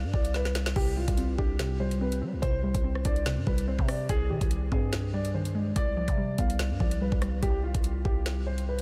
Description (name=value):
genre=hip hop, drill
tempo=144 BPM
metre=4/4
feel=half-time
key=C harmonic minor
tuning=A4 = 440 Hz
part: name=dark baby grand piano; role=melody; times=0.0-8.8 s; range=F4 to F5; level=-37 LUFS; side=equal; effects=subtle chorus, low-pass filter, delay
part: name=growling 808-style bass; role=bass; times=0.0-8.8 s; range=C2 to G3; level=-33 LUFS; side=equal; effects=none
part: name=drill drum kit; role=drums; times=0.1-8.8 s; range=crash cymbal, hi-hat, kick drum, rim click, snare drum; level=-33 LUFS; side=equal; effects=none
part: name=soft round pluck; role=accompaniment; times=0.8-7.4 s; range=C2 to D4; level=-36 LUFS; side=equal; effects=chorus, low-pass filter
room=light reverb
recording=none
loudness=-28 LUFS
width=mono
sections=0.0-8.8 A section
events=drum fill 0.3-0.8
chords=0.0 Csus2; 4.1 Abmaj7/C; 5.8 G7/C; 7.4 C5